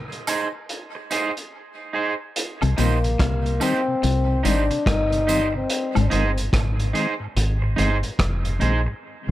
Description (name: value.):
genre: dub reggae.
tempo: 72 BPM.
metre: 4/4.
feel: swing 62% on 16ths.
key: unclear.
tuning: A4 = 440 Hz.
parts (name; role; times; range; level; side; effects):
vintage drum kit; drums; 0.1-8.8 s; hi-hat, kick drum, rim click; -26 LUFS; equal; none.
electric guitar at the edge of break-up; accompaniment; 0.3-8.9 s; Eb4 to C5; -27 LUFS; right 4 dB; dub echo.
tambourine and woodblock; percussion; 0.3-6.1 s; none; -35 LUFS; right 3 dB; dub echo.
mellow tonewheel organ; accompaniment; 2.6-9.3 s; Ab2 to C4; -30 LUFS; left 2 dB; slow rotary speaker, dub echo.
electric guitar at the edge of break-up; riff; 2.6-6.0 s; G2 to C3; -29 LUFS; left 7 dB; none.
deep dub fingered electric bass; bass; 2.6-9.3 s; F1 to C2; -22 LUFS; equal; none.
dark trombone; melody; 2.8-6.4 s; Bb3 to Eb4; -24 LUFS; left 3 dB; dub echo.
room: light reverb, studio reverb.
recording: none.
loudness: -19 LUFS.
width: side -15 dB against mid.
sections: 0.0-2.4 A section; 2.4-9.3 B section.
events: break 0.0-2.4, 9.0; part muted 5.7-9.3.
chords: 0.0 Ab; 2.4 Cm; 5.7 Ab.